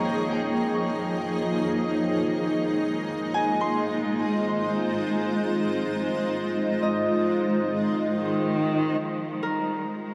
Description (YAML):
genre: ambient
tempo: free time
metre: none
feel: none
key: F minor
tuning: A4 = 442 Hz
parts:
  - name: granular cloud pad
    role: sustained chords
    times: 0.0-10.1 s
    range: F3 to Ab5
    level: -27 LUFS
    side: equal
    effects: built-in reverb
  - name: Celtic harp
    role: arpeggios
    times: 0.0-10.1 s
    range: Bb4 to Db6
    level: -35 LUFS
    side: equal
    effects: diffuse ambient delay
  - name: warm cello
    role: melody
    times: 8.1-10.1 s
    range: Eb3 to Ab3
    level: -30 LUFS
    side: equal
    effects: diffuse ambient delay
room: wet huge ambient reverb, RT60 8.0 s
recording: none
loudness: -26 LUFS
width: mono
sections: 0.0-9.0 A section; 9.0-10.1 B section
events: none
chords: 0.0 Eb7sus4/F; 2.0 Fm7; 9.0 Eb7sus4/F